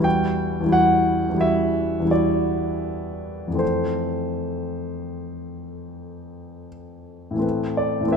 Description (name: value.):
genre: classical, impressionist solo piano.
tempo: 76-88 BPM.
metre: 5/4.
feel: rubato.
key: unclear.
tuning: A4 = 440 Hz.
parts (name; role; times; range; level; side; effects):
clear grand piano; solo; 0.0-8.2 s; E2 to G5; -21 LUFS; equal; none.
room: wet scoring stage reverb, RT60 1.8 s.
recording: minimal, uncompressed stereo recording.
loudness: -20 LUFS.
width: side -6 dB against mid.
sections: 0.0-8.2 A section.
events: none.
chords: 0.0 Em9; 3.6 Fmaj7; 7.4 Amadd9.